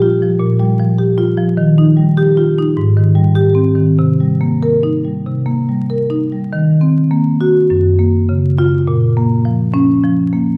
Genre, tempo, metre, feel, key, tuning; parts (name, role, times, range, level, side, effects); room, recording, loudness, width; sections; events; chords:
classical, contemporary piece for solo marimba; 93-105 BPM; 4/4; rubato; C minor, Eb dorian from 6.5 s; A4 = 440 Hz
marimba with medium mallets; solo; 0.0-10.6 s; Gb2 to Bb4; -13 LUFS; equal
wet recital hall reverb, RT60 1.5 s; recorded in a church or concert hall, vinyl crackle; -13 LUFS; mono
0.0-6.5 A section; 6.5-10.6 B section
0.0 Gm7/Bb; 1.6 Ebadd9; 2.8 Abmaj7; 4.0 Cm7; 6.5 Ebm6; 7.7 Gbmaj7; 8.9 Bbm